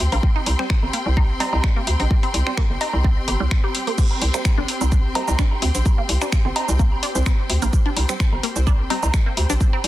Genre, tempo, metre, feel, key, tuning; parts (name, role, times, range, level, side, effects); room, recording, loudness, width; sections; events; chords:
minimal techno; 128 BPM; 4/4; swing 54% on 16ths; A4 = 437 Hz
hollow knocking FM bass; bass; 0.0-9.9 s; G1 to D2; -21 LUFS; equal; sidechain pumping
house drum kit; drums; 0.0-9.9 s; crash cymbal, finger snaps, hi-hat, shaker; -26 LUFS; equal; soft clipping on snare
warm studio string section; texture; 0.0-9.9 s; C4 to C6; -29 LUFS; left 1 dB; sidechain pumping
resonant blip pluck; riff; 0.1-9.8 s; G3 to G4; -29 LUFS; equal; phaser, sidechain pumping, dub echo
woodblock and cowbell; percussion; 0.1-9.8 s; -29 LUFS; right 3 dB
electronic kick drum; drums; 0.2-9.7 s; -18 LUFS; equal
filtered dub chord stab; stabs; 0.6-9.0 s; G3 to C5; -32 LUFS; right 4 dB; lush chorus, digital delay
pulsing gated texture; texture; 4.0-9.9 s; C4 to C5; -38 LUFS; equal
little or no reverb; dense, heavily limited modern master; -17 LUFS; side -15 dB against mid
0.0-9.9 A section
0.0 C5